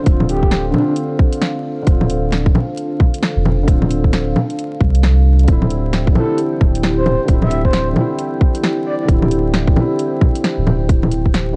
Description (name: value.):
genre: future garage.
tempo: 133 BPM.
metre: 4/4.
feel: swing 62% on 16ths.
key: D minor.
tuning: A4 = 440 Hz.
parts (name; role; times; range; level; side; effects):
felt-muted upright piano; accompaniment; 0.0-11.6 s; D3 to F4; -26 LUFS; equal; sidechain pumping, analog delay.
dark analog pad; sustained chords; 0.0-11.6 s; D4 to G5; -25 LUFS; equal; chorus, phaser, sidechain pumping.
soft dub sub bass; bass; 0.1-11.6 s; D1 to C2; -19 LUFS; equal; sidechain pumping.
electronic kick drum; drums; 0.1-11.3 s; none; -16 LUFS; equal; vintage 12-bit sampler grit.
garage drum kit; drums; 0.1-11.5 s; bongos, hi-hat, snare drum; -21 LUFS; equal; vintage 12-bit sampler grit.
breathy flute-like synth lead; melody; 0.3-0.9, 6.2-9.1 s; D4 to E5; -26 LUFS; equal; chorus, vintage 12-bit sampler grit, analog delay.
room: little or no reverb.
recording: dark, warm production, vinyl crackle, nothing above 10.6 kHz.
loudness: -16 LUFS.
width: mono.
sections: 0.0-11.6 A section.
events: none.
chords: 0.0 Dm7; 5.5 C/D.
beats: | 0.07 0.52 0.97 1.42 | 1.87 2.32 2.77 3.22 | 3.67 4.13 4.58 5.03 | 5.48 5.93 6.38 6.83 | 7.28 7.74 8.19 8.64 | 9.09 9.54 9.99 10.44 | 10.89 11.34.